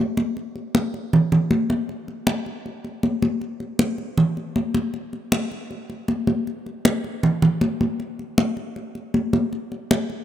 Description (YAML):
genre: latin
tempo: 157 BPM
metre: 4/4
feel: straight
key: none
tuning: none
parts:
  - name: congas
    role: percussion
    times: 0.2-10.2 s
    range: none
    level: -21 LUFS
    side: equal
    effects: none
room: moderate plate reverb, RT60 3.0 s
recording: none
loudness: -21 LUFS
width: side -11 dB against mid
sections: 0.4-10.2 A section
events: none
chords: none